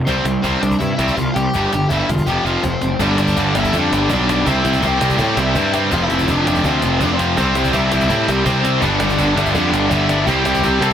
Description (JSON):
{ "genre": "punk rock", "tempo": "165 BPM", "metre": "4/4", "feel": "straight", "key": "C major", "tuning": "A4 = 440 Hz", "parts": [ { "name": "sludgy distorted guitar", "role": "riff", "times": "0.0-10.9 s", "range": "F2 to C4", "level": "-18 LUFS", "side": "right 1 dB", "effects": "overdrive" }, { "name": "overdriven semi-hollow guitar", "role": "melody", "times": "0.1-10.9 s", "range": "C4 to A5", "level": "-21 LUFS", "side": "left 3 dB", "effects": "none" }, { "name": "fuzz picked electric bass", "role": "bass", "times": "0.1-10.9 s", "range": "E1 to A2", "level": "-20 LUFS", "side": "equal", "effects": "overdrive" }, { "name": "cajon", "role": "drums", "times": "0.1-10.9 s", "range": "none", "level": "-27 LUFS", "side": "equal", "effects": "none" }, { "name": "tight distorted guitar", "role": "riff", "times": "8.8-10.9 s", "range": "G2 to E4", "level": "-21 LUFS", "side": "equal", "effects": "distortion" } ], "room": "light reverb", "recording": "none", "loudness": "-14 LUFS", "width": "side -9 dB against mid", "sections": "0.0-3.0 A section; 3.0-10.9 B section", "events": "drum fill 2.3-3.0", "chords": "0.1 C; 1.5 G5; 2.3 F5; 3.0 G; 4.5 C; 5.9 F5; 7.4 C; 8.8 G; 10.3 C" }